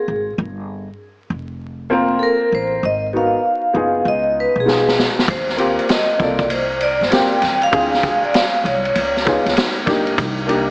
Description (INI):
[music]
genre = hip hop, jazz-hop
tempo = 98 BPM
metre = 4/4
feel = swing 65% on 16ths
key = unclear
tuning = A4 = 441 Hz
[part]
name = vibraphone with medium hard mallets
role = melody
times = 0.0-9.5 s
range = Ab4 to G5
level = -18 LUFS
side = equal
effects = tape echo
[part]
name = upright bass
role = bass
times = 0.1-10.7 s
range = F1 to Eb2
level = -27 LUFS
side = equal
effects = none
[part]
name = warm upright piano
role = accompaniment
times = 1.9-10.7 s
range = Bb3 to Bb4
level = -20 LUFS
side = left 1 dB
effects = none
[part]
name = vintage drum kit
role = drums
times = 4.7-10.7 s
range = hi-hat, kick drum, ride cymbal, snare drum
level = -19 LUFS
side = equal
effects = none
[part]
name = egg shaker and congas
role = percussion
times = 5.3-10.7 s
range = none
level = -34 LUFS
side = right 1 dB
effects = none
[sound]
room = wet lush hall reverb, RT60 2.1 s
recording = dreamy mix soaked in reverb, vinyl crackle, small speaker sound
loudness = -14 LUFS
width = side -27 dB against mid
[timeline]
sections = 0.0-10.7 A section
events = drum fill 4.7-5.3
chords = 0.4 Gm11; 2.8 Abm7; 4.1 Db9; 5.3 Eb69; 7.7 Dm7b5; 9.0 Db9; 10.2 Cm9